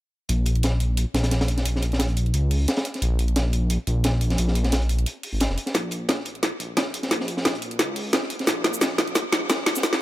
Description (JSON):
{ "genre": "liquid drum and bass", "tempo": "176 BPM", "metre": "4/4", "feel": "swing 54% on 16ths", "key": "Bb minor", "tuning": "A4 = 440 Hz", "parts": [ { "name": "dark detuned saw bass", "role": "bass", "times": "0.3-10.0 s", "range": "F1 to Db2", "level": "-24 LUFS", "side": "equal", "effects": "high-pass filter" }, { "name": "crunchy breakbeat drum kit", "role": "drums", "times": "0.3-10.0 s", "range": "hi-hat, snare drum", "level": "-27 LUFS", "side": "equal", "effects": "high-pass filter on hats, high-pass filter on snare, high-pass filter on room" }, { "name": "drum and bass drum kit", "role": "drums", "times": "0.3-10.0 s", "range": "hi-hat, shaker, snare drum", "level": "-24 LUFS", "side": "equal", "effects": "none" }, { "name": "electronic kick drum", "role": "drums", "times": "5.7-9.9 s", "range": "none", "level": "-34 LUFS", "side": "equal", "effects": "none" } ], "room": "little or no reverb", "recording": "high-pass filter", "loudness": "-21 LUFS", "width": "side -15 dB against mid", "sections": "0.3-5.7 A section; 5.7-10.0 B section", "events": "build-up 5.7-10.0; drum fill 5.7-10.0", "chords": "none" }